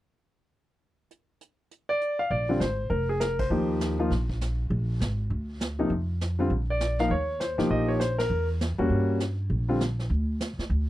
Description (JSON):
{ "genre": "jazz piano trio", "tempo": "200 BPM", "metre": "4/4", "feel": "swing 61% on 8ths", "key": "Bb mixolydian", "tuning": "A4 = 440 Hz", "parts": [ { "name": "vintage brush drum kit", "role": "drums", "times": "1.1-10.9 s", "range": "brushed snare drum, hi-hat, kick drum, ride cymbal, snare drum", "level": "-35 LUFS", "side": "right 1 dB", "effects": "none" }, { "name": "clear concert grand piano", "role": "melody", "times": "1.9-9.8 s", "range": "C3 to F5", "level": "-26 LUFS", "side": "left 1 dB", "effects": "none" }, { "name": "upright bass", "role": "bass", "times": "2.3-10.9 s", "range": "F1 to G2", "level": "-28 LUFS", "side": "equal", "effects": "none" } ], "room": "little or no reverb", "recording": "dry, close 1970s-style studio recording", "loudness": "-25 LUFS", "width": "side -15 dB against mid", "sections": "1.1-2.3 A section; 2.3-10.9 B section", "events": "band accent 3.4, 8.2", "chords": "1.1 N.C.; 2.3 Bb9; 3.5 Ebadd9; 4.7 Bb7; 5.9 F5; 6.5 Bb; 7.1 Eb13; 8.3 Edim7; 9.5 Bb", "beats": "| 1.11 1.41 1.71 2.01 | 2.31 2.61 2.91 3.21 | 3.51 3.81 4.11 4.41 | 4.71 5.01 5.31 5.61 | 5.91 6.21 6.51 6.81 | 7.11 7.41 7.71 8.01 | 8.31 8.61 8.91 9.21 | 9.51 9.81 10.11 10.40 | 10.71" }